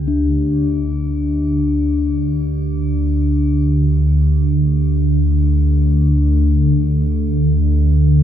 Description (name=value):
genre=ambient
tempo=free time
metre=none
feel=none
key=unclear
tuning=A4 = 440 Hz
part: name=deep rumbling drone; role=drone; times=0.0-8.2 s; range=D2 to D3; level=-14 LUFS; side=equal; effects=built-in reverb, phaser
part: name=quartz singing bowl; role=texture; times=0.0-8.2 s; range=D4 to G4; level=-22 LUFS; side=left 4 dB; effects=shimmer reverb
room=wet huge ambient reverb, RT60 7.6 s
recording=dark, warm production, nothing above 10.8 kHz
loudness=-14 LUFS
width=side -10 dB against mid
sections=0.1-8.2 A section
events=none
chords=none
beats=free time